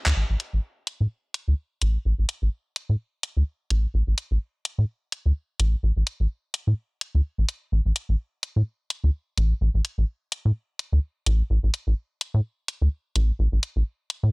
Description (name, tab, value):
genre	minimal techno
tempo	127 BPM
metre	4/4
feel	swing 56% on 16ths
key	unclear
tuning	A4 = 444 Hz
part	rubbery square bass	bass	0.1-14.3 s	A1 to A2	-20 LUFS	equal	none
part	garage drum kit	drums	0.1-14.2 s	handclaps, hi-hat, shaker	-27 LUFS	left 1 dB	none
room	digital ambience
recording	dry, gritty hardware recording, cassette tape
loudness	-23 LUFS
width	side -31 dB against mid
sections	0.2-14.3 A section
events	drum fill 0.0; band accent 0.0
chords	none